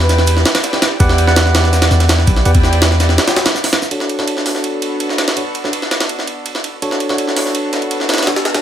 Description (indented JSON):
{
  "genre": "drum and bass, jungle",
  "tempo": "165 BPM",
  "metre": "4/4",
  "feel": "straight",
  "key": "B minor",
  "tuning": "A4 = 440 Hz",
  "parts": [
    { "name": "warm studio string section", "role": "sustained chords", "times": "0.0-8.6 s", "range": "B3 to G5", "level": "-23 LUFS", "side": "left 1 dB", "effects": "vintage 12-bit sampler grit" },
    { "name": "long sustained 808-style bass", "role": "bass", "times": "0.0-3.2 s", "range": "B1 to E2", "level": "-12 LUFS", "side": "equal", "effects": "tube saturation" },
    { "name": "jungle sampler-style drum kit", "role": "drums", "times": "0.0-8.6 s", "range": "hi-hat, kick drum, ride cymbal, snare drum", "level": "-15 LUFS", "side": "equal", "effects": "high-pass filter on kick, high-pass filter on snare, high-pass filter on cymbals, high-pass filter on hats, high-pass filter on room" },
    { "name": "crunchy breakbeat drum kit", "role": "drums", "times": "0.1-3.9 s", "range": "hi-hat, shaker, snare drum", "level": "-28 LUFS", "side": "left 1 dB", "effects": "none" },
    { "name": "bright tine electric piano", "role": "stabs", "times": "1.0-8.6 s", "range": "D4 to F#5", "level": "-20 LUFS", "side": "right 2 dB", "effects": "low-pass filter, dub echo" }
  ],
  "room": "light reverb, studio ambience",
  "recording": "none",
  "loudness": "-12 LUFS",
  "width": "side -10 dB against mid",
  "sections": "0.0-3.9 A section; 3.9-8.6 B section",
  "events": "drop 0.0-3.9; break 3.2-3.9; filter sweep on tine electric piano 3.9-8.6",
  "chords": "0.0 Em7; 3.9 Bm7"
}